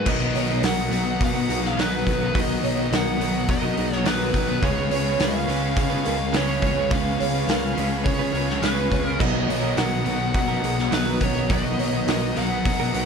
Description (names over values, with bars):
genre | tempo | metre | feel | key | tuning
rock, shoegaze and dream pop | 105 BPM | 4/4 | straight | B lydian | A4 = 440 Hz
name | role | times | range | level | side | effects
nasal lead guitar with a parked wah | melody | 0.0-13.1 s | B4 to F#5 | -28 LUFS | left 1 dB | overdrive, analog delay
fingerpicked twelve-string acoustic guitar | arpeggios | 0.0-13.1 s | F#4 to C#5 | -33 LUFS | right 3 dB | analog chorus, analog delay
direct-recorded clean electric guitar | riff | 0.0-13.1 s | B2 to B4 | -29 LUFS | right 14 dB | reverse reverb
thick fuzz guitar | riff | 0.0-13.1 s | B2 to C#4 | -28 LUFS | left 14 dB | distortion, wide subtle chorus
fuzz picked electric bass | bass | 0.0-13.1 s | B1 to C#3 | -27 LUFS | equal | overdrive
musette accordion | sustained chords | 0.1-13.1 s | E#5 to D#6 | -35 LUFS | right 6 dB | none
overdriven electric guitar | riff | 0.1-13.1 s | B2 to C#4 | -31 LUFS | equal | none
loose indie drum kit | drums | 0.1-13.1 s | crash cymbal, hi-hat, kick drum, snare drum | -26 LUFS | equal | none
room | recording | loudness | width
studio ambience | dark, warm production | -20 LUFS | side -6 dB against mid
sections
0.1-13.1 A section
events
none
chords
0.1 Bmaj7; 4.6 C#7; 9.2 Bmaj7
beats
| 0.06 0.63 1.20 1.77 | 2.35 2.92 3.49 4.06 | 4.63 5.20 5.78 6.35 | 6.92 7.49 8.07 8.64 | 9.21 9.79 10.36 10.93 | 11.51 12.08 12.65